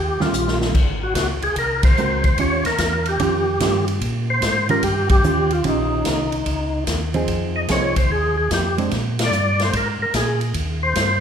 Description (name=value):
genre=soul jazz organ trio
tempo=147 BPM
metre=4/4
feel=swing 66% on 8ths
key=Eb mixolydian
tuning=A4 = 440 Hz
part: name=percussive tonewheel organ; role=melody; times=0.0-11.2 s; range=Eb4 to Eb5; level=-21 LUFS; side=equal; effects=slow rotary speaker, overdrive, chorus vibrato
part: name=mellow tonewheel organ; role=bass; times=0.0-11.2 s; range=Ab1 to Bb2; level=-24 LUFS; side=equal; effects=slow rotary speaker
part: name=hollow-body jazz guitar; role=accompaniment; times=0.2-8.9 s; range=Eb3 to Bb4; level=-24 LUFS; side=right 3 dB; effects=none
part: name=swinging big-band drum kit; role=drums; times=0.2-11.1 s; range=crash cymbal, hi-hat, kick drum, ride cymbal, snare drum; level=-23 LUFS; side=equal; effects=none
room=moderate recital hall reverb, RT60 1.6 s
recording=recorded in a church or concert hall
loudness=-17 LUFS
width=side -8 dB against mid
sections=0.0-11.2 A section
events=drum fill 0.3-0.7; band accent 1.8, 5.0, 9.1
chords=0.0 Eb9; 0.7 Ab9; 2.4 Eb9; 7.3 Fm7; 8.9 Bb7; 10.5 Eb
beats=0.34 | 0.74 1.15 1.56 1.97 | 2.38 2.79 3.20 3.60 | 4.01 4.42 4.83 5.24 | 5.65 6.05 6.46 6.87 | 7.28 7.69 8.10 8.50 | 8.91 9.32 9.73 10.13 | 10.54 10.95